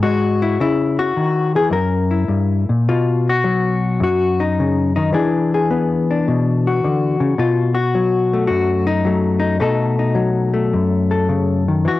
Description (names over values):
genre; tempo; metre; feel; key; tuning
solo jazz; 107 BPM; 4/4; swing 68% on 8ths, rubato; B mixolydian; A4 = 440 Hz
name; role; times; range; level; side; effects
hollow-body jazz guitar; solo; 0.0-12.0 s; F#2 to A#4; -15 LUFS; left 2 dB; cassette tape
room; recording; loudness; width
light reverb, digital ambience; home recording on cassette; -15 LUFS; side -15 dB against mid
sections
0.0-2.9 A section; 2.9-12.0 B section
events
hollow-body jazz guitar solo 2.9-12.0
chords
0.0 N.C.; 0.6 C#m; 1.7 F#7b9; 2.9 B; 5.1 E7; 7.4 B7